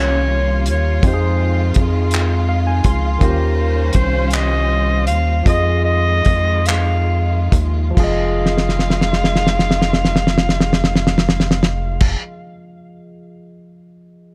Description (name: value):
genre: slow six-eight R&B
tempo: 44-55 BPM (dotted quarters)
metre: 6/8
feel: straight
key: F minor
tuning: A4 = 439 Hz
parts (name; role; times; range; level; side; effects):
- mellow clarinet; melody; 0.0-12.2 s; Bb4 to F5; -24 LUFS; equal; none
- barky tine electric piano; accompaniment; 0.0-14.3 s; Eb3 to C6; -27 LUFS; equal; analog chorus
- rich studio string section; sustained chords; 0.0-12.2 s; Eb3 to C5; -29 LUFS; equal; none
- rubbery square bass; bass; 0.0-12.2 s; F1 to F2; -20 LUFS; equal; none
- cloth-damped thuddy drum kit; drums; 0.7-12.2 s; crash cymbal, handclaps, hi-hat, kick drum, snare drum; -19 LUFS; equal; none
room: small room ambience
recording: none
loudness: -16 LUFS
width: mono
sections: 0.0-8.0 A section; 8.0-13.4 B section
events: tine electric piano fill 2.1-3.2; slowing down 3.2-8.0; drum fill 8.4-12.0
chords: 0.0 Eb13; 1.0 Fm7; 3.2 Eb13; 5.5 Fm7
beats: | 1.03 2.12 | 3.21 4.32 | 5.46 6.66 | 7.97 9.33 | 10.70 12.06